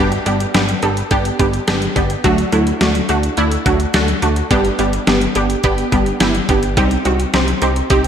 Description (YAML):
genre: synth-pop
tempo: 106 BPM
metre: 4/4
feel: straight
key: G major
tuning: A4 = 441 Hz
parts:
  - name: wide unison pluck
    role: accompaniment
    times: 0.0-8.0 s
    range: A3 to A4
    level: -17 LUFS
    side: right 2 dB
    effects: ensemble chorus
  - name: wide unison pluck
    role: arpeggios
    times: 0.0-7.8 s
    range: F#3 to G4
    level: -23 LUFS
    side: left 2 dB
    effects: wide subtle chorus, ping-pong delay
  - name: smooth gliding synth bass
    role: bass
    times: 0.0-8.1 s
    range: G1 to D2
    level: -20 LUFS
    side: equal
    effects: none
  - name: detuned 8-bit digital drum machine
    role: drums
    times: 0.1-8.1 s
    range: hi-hat, kick drum, snare drum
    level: -19 LUFS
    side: left 1 dB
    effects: gated reverb
room: moderate plate reverb, RT60 2.9 s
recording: bright 1980s-style digital production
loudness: -13 LUFS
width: side -8 dB against mid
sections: 0.0-8.1 A section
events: none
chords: 0.0 G; 2.2 D; 4.5 G; 6.8 Cm